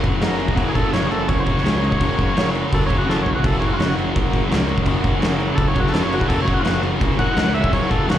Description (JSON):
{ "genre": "garage rock duo or trio", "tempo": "168 BPM", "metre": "4/4", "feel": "straight", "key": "F# major", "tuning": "A4 = 439 Hz", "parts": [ { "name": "overdriven combo organ", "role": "sustained chords", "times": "0.0-8.2 s", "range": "F#4 to A#5", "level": "-30 LUFS", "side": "left 1 dB", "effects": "none" }, { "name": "fuzz guitar", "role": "riff", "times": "0.0-8.2 s", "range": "F#2 to F#3", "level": "-22 LUFS", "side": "left 1 dB", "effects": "distortion, slapback echo" }, { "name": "fuzz picked electric bass", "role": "bass", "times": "0.0-8.2 s", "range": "F#1 to C#2", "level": "-24 LUFS", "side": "equal", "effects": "overdrive" }, { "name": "oversized low-tuned drum kit", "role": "drums", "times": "0.0-8.2 s", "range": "crash cymbal, kick drum, snare drum, toms", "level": "-21 LUFS", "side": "equal", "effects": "none" }, { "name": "overdriven combo organ", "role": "melody", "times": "0.7-8.2 s", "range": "E#4 to F#5", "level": "-24 LUFS", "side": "equal", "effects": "slapback echo" } ], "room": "small room ambience", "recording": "live gig heard through the venue's PA, club reverb", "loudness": "-16 LUFS", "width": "side -11 dB against mid", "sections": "0.0-8.2 A section", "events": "transistor combo organ fill 0.0-0.6; transistor combo organ solo 0.0-8.2; drum fill 3.1-3.4", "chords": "0.0 F#" }